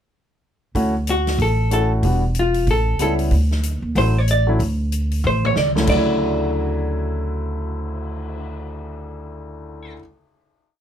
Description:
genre	jazz, small-group swing and bop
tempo	187 BPM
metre	4/4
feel	swing 61% on 8ths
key	D major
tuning	A4 = 441 Hz
part	upright bass	bass	0.7-9.9 s	E1 to Eb2	-21 LUFS	equal	none
part	warm concert grand piano	accompaniment	0.8-10.0 s	D2 to F#4	-24 LUFS	left 2 dB	none
part	swinging big-band drum kit	drums	0.8-8.4 s	crash cymbal, cymbal swell, hi-hat, kick drum, snare drum, toms	-28 LUFS	equal	none
part	vintage hollow-body jazz guitar	melody	1.1-9.9 s	F4 to D5	-21 LUFS	equal	none
room	little or no reverb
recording	close, detailed microphones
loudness	-17 LUFS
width	side -9 dB against mid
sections	0.7-5.9 A section; 5.9-8.5 final chord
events	drum fill 5.2-5.9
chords	0.7 Dmaj7; 2.0 Em7; 2.7 A9; 3.3 Dmaj7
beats	| 0.75 1.07 1.39 1.71 | 2.04 2.36 2.68 3.00 | 3.32 3.64 3.96 4.28 | 4.60 4.92 5.25 5.57 | 5.89 6.21 6.53 6.85 | 7.17 7.50 7.82 8.14

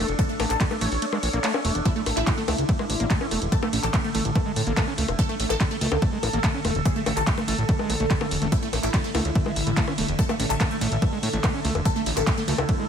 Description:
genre	psychedelic trance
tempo	144 BPM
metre	4/4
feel	straight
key	A major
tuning	A4 = 444 Hz
part	supersaw stab	melody	0.0-12.9 s	A3 to C#5	-30 LUFS	equal	phaser, sidechain pumping, dub echo
part	overtone-sweeping drone	sustained chords	0.0-12.9 s	D3 to E5	-31 LUFS	equal	chorus, built-in reverb, phaser, sidechain pumping
part	overdriven acid bass	riff	0.0-12.8 s	G#3 to C#4	-31 LUFS	right 2 dB	distortion, auto-pan, sidechain pumping, dub echo
part	fat analog bass	bass	0.0-12.6 s	E1 to A2	-26 LUFS	equal	none
part	drum and bass drum kit	drums	0.1-12.8 s	bongos, handclaps, hi-hat, ride cymbal	-29 LUFS	left 2 dB	none
part	electronic kick drum	drums	0.2-12.8 s	none	-24 LUFS	equal	overdrive
part	vowel-sweep wobble bass	second line	2.7-12.9 s	A3 to C#4	-41 LUFS	left 2 dB	none
room	digital ambience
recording	none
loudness	-21 LUFS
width	side -8 dB against mid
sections	0.0-12.9 A section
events	kick drops out 1.0-1.9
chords	0.0 A5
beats	| 0.19 0.60 1.02 1.44 | 1.85 2.27 2.69 3.10 | 3.52 3.94 4.36 4.77 | 5.19 5.61 6.02 6.44 | 6.86 7.27 7.69 8.11 | 8.52 8.94 9.36 9.77 | 10.19 10.61 11.02 11.44 | 11.86 12.27 12.69

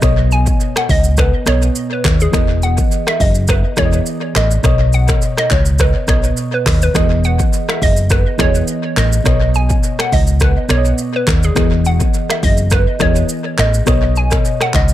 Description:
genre	afrobeats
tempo	104 BPM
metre	4/4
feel	swing 55% on 16ths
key	B major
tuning	A4 = 440 Hz
part	mellow FM electric piano	accompaniment	0.0-14.9 s	B2 to D#5	-20 LUFS	left 1 dB	chorus, phaser
part	fingered electric bass	bass	0.0-14.9 s	E1 to D#2	-14 LUFS	equal	none
part	deep house drum kit	drums	0.0-14.9 s	finger snaps, handclaps, hi-hat, kick drum, rim click, shaker	-16 LUFS	equal	overdrive, tape echo
part	hollow square pluck	melody	0.3-14.9 s	G#4 to G#5	-21 LUFS	right 1 dB	chorus, tape echo
room	light reverb, digital ambience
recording	echo-heavy mix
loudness	-12 LUFS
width	side -13 dB against mid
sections	0.0-14.9 A section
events	none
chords	0.0 Badd9; 2.3 Emaj7; 4.6 Badd9; 6.9 Emaj7; 9.3 Badd9; 11.6 Emaj7; 13.9 Badd9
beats	| 0.02 0.60 1.18 1.75 | 2.33 2.91 3.48 4.06 | 4.64 5.22 5.79 6.37 | 6.95 7.52 8.10 8.68 | 9.26 9.83 10.41 10.98 | 11.56 12.14 12.72 13.29 | 13.87 14.45

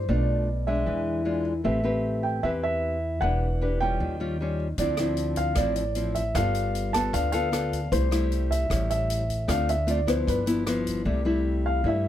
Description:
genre	bossa nova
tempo	153 BPM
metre	4/4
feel	straight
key	C major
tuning	A4 = 439 Hz
part	dark baby grand piano	melody	0.0-12.1 s	B4 to A5	-28 LUFS	right 1 dB	none
part	nylon-string guitar	accompaniment	0.0-12.1 s	G2 to B4	-28 LUFS	left 2 dB	none
part	upright bass	bass	0.0-12.1 s	E1 to G2	-28 LUFS	equal	none
part	open jazz drum kit	drums	4.8-11.0 s	hi-hat, kick drum, rim click	-33 LUFS	equal	none
room	little or no reverb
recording	close, detailed microphones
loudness	-23 LUFS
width	side -11 dB against mid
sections	0.0-11.1 A section; 11.1-12.1 B section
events	grand piano solo 11.1-12.1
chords	0.1 Bm7b5; 0.9 E7b9; 1.7 Am9; 3.2 Em7; 4.0 Eb9; 4.8 Dm9; 6.4 G9; 7.9 C6; 8.7 A7; 9.5 Dm7; 10.3 G6; 11.1 C6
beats	| 0.09 0.48 0.87 1.26 | 1.66 2.05 2.44 2.83 | 3.22 3.61 4.00 4.40 | 4.79 5.18 5.57 5.96 | 6.35 6.75 7.14 7.53 | 7.92 8.31 8.71 9.10 | 9.49 9.88 10.28 10.67 | 11.06 11.45 11.85

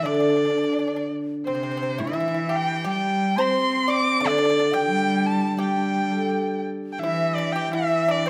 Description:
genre	chinese traditional, Chinese chamber ensemble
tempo	85 BPM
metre	2/4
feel	rubato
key	G zhi mode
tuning	A4 = 439 Hz
part	rich erhu	melody	0.0-8.3 s	C5 to D6	-28 LUFS	equal	none
part	bright reedy large dizi	second line	0.0-8.3 s	C5 to C6	-32 LUFS	equal	none
part	pipa	second line	0.0-8.3 s	C4 to D5	-33 LUFS	equal	none
part	warm cello	second line	0.0-8.3 s	C3 to C4	-29 LUFS	equal	none
part	steel-string zither	accompaniment	0.0-8.3 s	D3 to D5	-29 LUFS	equal	none
room	wet recital hall reverb, RT60 1.3 s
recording	none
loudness	-23 LUFS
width	mono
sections	0.0-7.0 A section; 7.0-8.3 B section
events	none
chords	none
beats	| 0.04 0.74 | 1.46 2.16 | 2.86 3.55 | 4.22 4.91 | 5.59 6.30 | 7.02 7.73

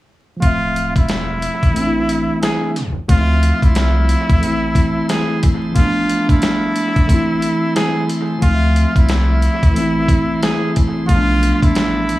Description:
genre	hip hop, boom-bap hip-hop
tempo	90 BPM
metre	4/4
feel	swing 62% on 16ths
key	unclear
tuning	A4 = 439 Hz
part	trumpet with straight mute	melody	0.4-12.2 s	E4 to G#4	-21 LUFS	equal	analog delay
part	mellow tine electric piano	accompaniment	0.4-12.2 s	E3 to E5	-18 LUFS	equal	medium stereo tremolo, cassette tape, analog delay
part	warm sub bass	bass	0.4-12.1 s	D1 to D2	-18 LUFS	equal	none
part	dusty soul sampler-style drum kit	drums	0.4-12.2 s	hi-hat, kick drum, snare drum	-17 LUFS	equal	none
part	bright tonewheel organ	sustained chords	3.1-12.2 s	F3 to C6	-33 LUFS	right 1 dB	lush chorus
room	digital ambience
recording	echo-heavy mix, vinyl crackle, tape stop, small room ambience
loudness	-13 LUFS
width	side -16 dB against mid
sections	0.4-3.1 A section; 3.1-12.2 B section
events	kick muted 1.8-3.1; tape stop 2.8-3.1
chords	0.4 Dm9; 1.8 Am; 3.1 Dm9; 4.4 Am; 5.8 Bm7b5; 7.1 Am; 8.4 Dm9; 9.8 Am; 11.1 Bm7b5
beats	| 0.43 1.09 1.76 2.43 | 3.09 3.76 4.43 5.09 | 5.76 6.43 7.09 7.76 | 8.43 9.09 9.76 10.43 | 11.09 11.76

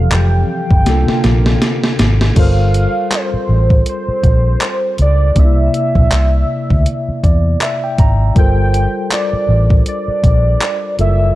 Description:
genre	contemporary R&B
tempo	80 BPM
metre	4/4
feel	swing 58% on 16ths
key	G dorian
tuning	A4 = 441 Hz
part	warm velvety synth lead	melody	0.0-11.4 s	C5 to G5	-19 LUFS	right 1 dB	chorus, analog delay
part	tine electric piano	accompaniment	0.0-11.4 s	C3 to Bb5	-20 LUFS	left 1 dB	medium stereo tremolo
part	chorused pulse-width pad	sustained chords	0.0-2.4 s	C3 to F5	-25 LUFS	right 4 dB	none
part	vintage muted fingered electric bass	bass	0.0-11.3 s	F1 to E2	-13 LUFS	equal	none
part	gated 80s digital drum machine	drums	0.1-11.2 s	crash cymbal, handclaps, hi-hat, kick drum, snare drum	-14 LUFS	equal	gated reverb, gated reverb snare
room	little or no reverb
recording	dry, gritty hardware recording, cassette tape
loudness	-11 LUFS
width	side -16 dB against mid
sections	0.0-2.4 A section; 2.4-11.4 A section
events	drum fill 0.9-2.4; tine electric piano fill 6.9-8.4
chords	0.0 Fmaj9; 0.9 C13sus4; 2.4 Gm11; 5.4 C9; 8.4 Gm11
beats	0.11 0.86 1.61 | 2.36 3.11 3.86 4.61 | 5.36 6.11 6.86 7.61 | 8.36 9.11 9.86 10.61

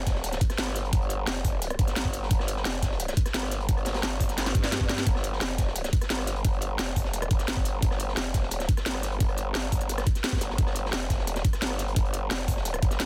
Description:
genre	dark technical drum and bass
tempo	174 BPM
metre	4/4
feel	straight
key	unclear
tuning	A4 = 440 Hz
part	growl bass	bass	0.0-13.1 s	F1 to G2	-33 LUFS	equal	chorus, overdrive
part	crunchy breakbeat drum kit	drums	0.1-13.1 s	hi-hat, snare drum	-41 LUFS	equal	high-pass filter on hats, high-pass filter on snare, high-pass filter on room
part	drum and bass drum kit	drums	0.1-13.1 s	hi-hat, rim click, snare drum	-34 LUFS	equal	none
part	electronic kick drum	drums	0.1-12.9 s	none	-28 LUFS	equal	none
room	little or no reverb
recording	dense, heavily limited modern master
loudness	-27 LUFS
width	mono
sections	0.0-13.1 A section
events	drum fill 4.4-5.1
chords	none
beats	0.24 0.58 | 0.93 1.27 1.62 1.96 | 2.31 2.65 3.00 3.34 | 3.69 4.03 4.38 4.72 | 5.07 5.41 5.76 6.10 | 6.45 6.79 7.13 7.48 | 7.83 8.17 8.52 8.86 | 9.20 9.55 9.89 10.24 | 10.58 10.93 11.27 11.62 | 11.96 12.31 12.65 13.00

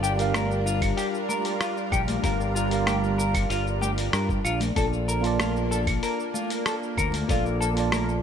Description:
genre	sunset chillout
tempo	95 BPM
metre	4/4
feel	straight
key	G minor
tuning	A4 = 440 Hz
part	mellow tine electric piano	accompaniment	0.0-8.2 s	G3 to A5	-29 LUFS	moving between left 7 dB and right 6 dB	auto-pan, ping-pong delay
part	lush unison pad	sustained chords	0.0-8.2 s	G3 to Bb4	-32 LUFS	right 1 dB	chorus, phaser
part	clean electric guitar	arpeggios	0.0-8.1 s	F4 to Bb4	-30 LUFS	left 2 dB	lush chorus, ping-pong delay
part	growling fingered electric bass	bass	0.0-8.2 s	G1 to G2	-28 LUFS	equal	overdrive
part	dusty soul sampler-style drum kit	drums	0.0-8.2 s	claves, hi-hat, rim click, shaker	-31 LUFS	equal	none
part	congas	percussion	0.3-8.0 s	none	-35 LUFS	left 4 dB	none
part	electronic kick drum	drums	0.8-7.4 s	none	-28 LUFS	equal	none
room	light reverb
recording	none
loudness	-23 LUFS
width	side -8 dB against mid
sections	0.0-8.2 A section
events	none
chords	0.0 Gm7; 4.4 Bbmaj7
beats	0.34 0.98 1.61 | 2.24 2.87 3.50 4.13 | 4.76 5.40 6.03 6.66 | 7.29 7.92

